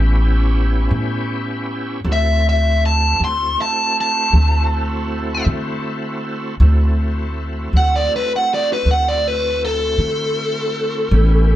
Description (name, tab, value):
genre	slow blues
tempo	53 BPM (dotted quarters)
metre	12/8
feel	straight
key	unclear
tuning	A4 = 441 Hz
part	bright tonewheel organ	sustained chords	0.0-11.6 s	A3 to G4	-25 LUFS	equal	slow rotary speaker, overdrive, chorus vibrato
part	upright bass	bass	0.0-11.6 s	A1 to D3	-17 LUFS	equal	none
part	biting lead guitar	melody	2.1-11.6 s	A4 to C6	-18 LUFS	equal	overdrive
room	light reverb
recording	band playing live in one room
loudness	-15 LUFS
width	side -13 dB against mid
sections	0.0-11.6 A section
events	none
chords	0.0 A7; 2.0 D7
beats	0.91 | 2.05 3.19 4.32 5.46 | 6.59 7.72 8.86 9.99 | 11.12